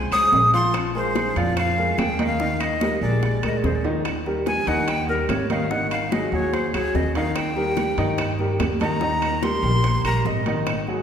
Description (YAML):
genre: Afro-Cuban jazz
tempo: 145 BPM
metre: 4/4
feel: straight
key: Eb major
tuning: A4 = 440 Hz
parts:
  - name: clear concert grand piano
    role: accompaniment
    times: 0.0-11.0 s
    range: Eb3 to F5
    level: -25 LUFS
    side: equal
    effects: none
  - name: upright bass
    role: bass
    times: 0.0-11.0 s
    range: Ab1 to G2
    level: -26 LUFS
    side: equal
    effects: none
  - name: breathy bright jazz flute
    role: melody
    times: 0.1-10.5 s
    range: Bb4 to Eb6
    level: -24 LUFS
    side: equal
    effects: none
  - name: bongos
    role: percussion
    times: 0.1-11.0 s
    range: none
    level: -33 LUFS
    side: left 4 dB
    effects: none
  - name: claves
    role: percussion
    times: 0.1-10.9 s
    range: none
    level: -38 LUFS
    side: left 3 dB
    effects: none
  - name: congas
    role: percussion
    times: 0.1-11.0 s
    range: none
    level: -31 LUFS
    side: right 1 dB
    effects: none
  - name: timbales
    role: percussion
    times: 0.1-10.9 s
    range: none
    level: -32 LUFS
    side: right 5 dB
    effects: none
room: wet concert hall reverb, RT60 2.1 s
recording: recorded in a church or concert hall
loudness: -19 LUFS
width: side -8 dB against mid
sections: 0.0-4.1 A section; 4.1-11.0 B section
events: drum fill 3.8, 10.5; flute solo 4.1-11.0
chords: 0.0 Fm7; 0.7 Bb5; 2.4 Eb; 3.2 Bb7; 4.1 Eb; 5.7 Ab5; 7.4 Eb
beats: 0.33 | 0.74 1.16 1.57 1.99 | 2.40 2.81 3.23 3.64 | 4.05 4.47 4.88 5.30 | 5.71 6.12 6.54 6.95 | 7.36 7.78 8.19 8.60 | 9.02 9.43 9.84 10.25 | 10.67